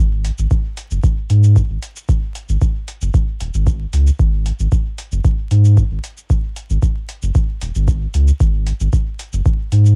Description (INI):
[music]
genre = dub techno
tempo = 114 BPM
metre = 4/4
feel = straight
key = unclear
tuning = A4 = 440 Hz
[part]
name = soft dub sub bass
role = bass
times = 0.0-10.0 s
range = D#1 to G#2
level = -16 LUFS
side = equal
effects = tube saturation, sidechain pumping
[part]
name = electronic hi-hat and shaker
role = drums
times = 0.2-10.0 s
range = none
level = -37 LUFS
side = equal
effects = none
[part]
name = electronic kick drum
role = drums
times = 0.5-9.6 s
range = none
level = -18 LUFS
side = equal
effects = none
[sound]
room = little or no reverb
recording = home recording on cassette, vinyl crackle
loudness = -17 LUFS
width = mono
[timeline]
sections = 0.0-10.0 A section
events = none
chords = none